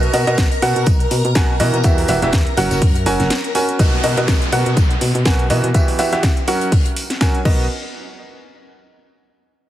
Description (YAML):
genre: piano house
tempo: 123 BPM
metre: 4/4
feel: swing 56% on 16ths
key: B major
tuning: A4 = 443 Hz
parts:
  - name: string machine, violins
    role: sustained chords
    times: 0.0-3.8 s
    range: A#4 to A#5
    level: -25 LUFS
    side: left 1 dB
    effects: ensemble chorus, sidechain pumping
  - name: bright baby grand piano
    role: riff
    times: 0.0-7.6 s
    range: B2 to G#5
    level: -19 LUFS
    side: right 1 dB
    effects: sidechain pumping, low-pass filter, tape echo
  - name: solid FM bass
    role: bass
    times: 0.0-7.7 s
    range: E1 to B2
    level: -20 LUFS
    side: equal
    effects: sidechain pumping
  - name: house drum kit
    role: drums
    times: 0.0-7.6 s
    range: crash cymbal, hi-hat, snare drum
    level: -24 LUFS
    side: equal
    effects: none
  - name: loose indie drum kit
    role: drums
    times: 0.1-7.3 s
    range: hi-hat, snare drum, tambourine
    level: -32 LUFS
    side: left 2 dB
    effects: high-pass filter on hats, high-pass filter on snare, high-pass filter on perc, high-pass filter on room
  - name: electronic kick drum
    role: drums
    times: 0.4-7.6 s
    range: none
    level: -16 LUFS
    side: equal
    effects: none
  - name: downlifter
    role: sound effects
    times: 3.8-7.7 s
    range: none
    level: -27 LUFS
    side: equal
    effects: none
room: light reverb, studio reverb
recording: heavily compressed radio sound, multiband compression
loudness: -14 LUFS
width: side -13 dB against mid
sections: 0.0-3.8 A section; 3.8-7.7 B section; 7.7-9.6 C section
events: drop 0.0-3.8; break 3.3-3.8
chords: 0.0 Bmaj7; 1.8 Emadd9; 2.6 F#; 3.8 Bmaj7; 5.7 Emadd9; 6.5 F#; 7.5 Bmaj7; 7.7 N.C.